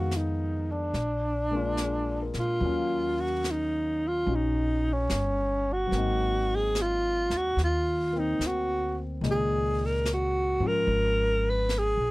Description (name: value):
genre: jazz ballad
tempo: 73 BPM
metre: 4/4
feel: swing 67% on 8ths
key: Eb minor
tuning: A4 = 441 Hz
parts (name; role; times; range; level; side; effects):
- breathy alto saxophone; melody; 0.0-12.1 s; Db4 to Cb5; -27 LUFS; equal; none
- warm grand piano; accompaniment; 0.0-12.1 s; Bb2 to F5; -34 LUFS; left 5 dB; none
- upright bass; bass; 0.0-12.1 s; G1 to Bb2; -30 LUFS; equal; none
- jazz brush drum kit; drums; 0.1-12.1 s; brushed snare drum, hi-hat, snare drum; -37 LUFS; equal; none
room: little or no reverb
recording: dry, close 1970s-style studio recording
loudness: -25 LUFS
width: side -20 dB against mid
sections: 0.0-2.6 A section; 2.6-12.1 A section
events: none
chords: 0.0 Fm7b5; 0.9 Bb7; 2.6 Ebm9; 5.9 Ab9; 9.2 Db69